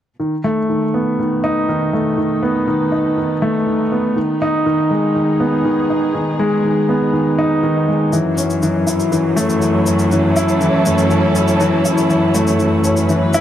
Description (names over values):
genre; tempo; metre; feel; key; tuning
piano and strings electronica; 121 BPM; 4/4; straight; unclear; A4 = 440 Hz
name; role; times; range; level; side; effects
dark studio string section; sustained chords; 0.2-13.4 s; B2 to B4; -23 LUFS; right 2 dB; none
dark baby grand piano; riff; 0.2-13.4 s; D#3 to E4; -15 LUFS; equal; digital delay
warm studio cello section; bass; 8.1-13.4 s; F#2; -18 LUFS; equal; none
shaker; drums; 8.1-13.4 s; none; -28 LUFS; left 2 dB; none
room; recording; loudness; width
light reverb, studio reverb; none; -14 LUFS; side -11 dB against mid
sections
0.2-13.4 A section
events
fade-in on string section 0.2-13.4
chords
0.2 B7; 4.2 G#m/D#; 8.1 F#m7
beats
| 0.20 0.69 1.19 1.69 | 2.18 2.68 3.17 3.67 | 4.17 4.66 5.16 5.65 | 6.15 6.64 7.14 7.64 | 8.13 8.63 9.12 9.62 | 10.12 10.61 11.11 11.60 | 12.10 12.60 13.09